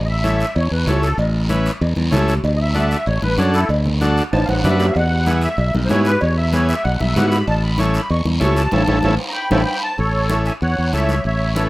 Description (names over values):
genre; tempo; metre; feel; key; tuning
latin, cumbia; 191 BPM; 4/4; straight; A major; A4 = 440 Hz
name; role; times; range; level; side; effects
musette accordion; melody; 0.0-11.7 s; E4 to C#6; -22 LUFS; equal; plate reverb
modern bright fingered electric bass; bass; 0.0-11.7 s; A1 to G#2; -18 LUFS; equal; none
combo organ; accompaniment; 0.2-11.7 s; B3 to B4; -23 LUFS; equal; plate reverb
congas; percussion; 0.2-11.7 s; none; -25 LUFS; left 1 dB; none
guiro; percussion; 0.2-11.7 s; none; -29 LUFS; equal; none
cowbell and timbales; percussion; 0.6-9.6 s; none; -24 LUFS; right 1 dB; none
room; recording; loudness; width
light reverb; rough home demo mix; -15 LUFS; side -18 dB against mid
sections
0.0-10.0 A section; 10.0-11.7 B section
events
accordion solo 0.0-10.0; drum fill 4.3-5.0; band accent 8.7-10.0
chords
0.0 A; 2.4 D; 5.0 E; 7.5 A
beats
0.24 0.55 0.87 | 1.18 1.50 1.81 2.13 | 2.44 2.75 3.07 3.38 | 3.70 4.01 4.33 4.64 | 4.96 5.27 5.59 5.90 | 6.22 6.53 6.84 7.16 | 7.47 7.79 8.10 8.42 | 8.73 9.04 9.36 9.67 | 9.99 10.30 10.62 10.93 | 11.25 11.56